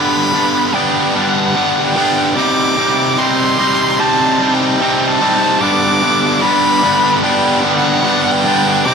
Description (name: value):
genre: rock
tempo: 74 BPM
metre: 4/4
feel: straight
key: G major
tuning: A4 = 440 Hz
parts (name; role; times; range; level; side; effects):
- rich violin; melody; 0.0-8.9 s; F#5 to D6; -16 LUFS; equal; tape echo
- distorted electric guitar; riff; 0.0-8.9 s; G2 to Eb4; -13 LUFS; equal; overdrive
room: moderate huge ambient reverb, RT60 7.6 s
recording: dark, warm production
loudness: -11 LUFS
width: side -6 dB against mid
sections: 0.0-8.9 A section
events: build-up 0.0-8.9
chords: 0.0 G; 2.4 Cm; 5.6 G